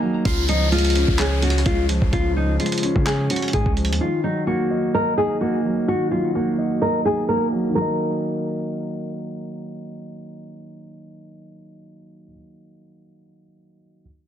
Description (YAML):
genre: hip hop, trap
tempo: 128 BPM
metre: 4/4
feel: half-time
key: Eb minor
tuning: A4 = 439 Hz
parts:
  - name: dark grand piano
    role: accompaniment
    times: 0.0-14.0 s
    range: Db3 to Eb5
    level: -24 LUFS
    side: right 1 dB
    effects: low-pass filter
  - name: nylon-string guitar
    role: melody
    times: 0.3-9.1 s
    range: Eb4 to Bb4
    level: -23 LUFS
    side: left 1 dB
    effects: low-pass filter, ping-pong delay
  - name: long sustained 808-style bass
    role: bass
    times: 0.3-4.0 s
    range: Db2 to Db3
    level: -21 LUFS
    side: equal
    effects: none
  - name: dusty soul sampler-style drum kit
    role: drums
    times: 0.3-4.0 s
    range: handclaps, hi-hat, kick drum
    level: -24 LUFS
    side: equal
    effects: overdrive
  - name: downlifter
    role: sound effects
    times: 0.3-4.0 s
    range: none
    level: -30 LUFS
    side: left 1 dB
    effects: none
room: light reverb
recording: dense, heavily limited modern master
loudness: -18 LUFS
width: side -10 dB against mid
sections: 0.3-7.8 A section; 7.8-11.5 B section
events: break 0.0; filter sweep 0.3-7.8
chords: 0.3 Db; 4.0 Ebm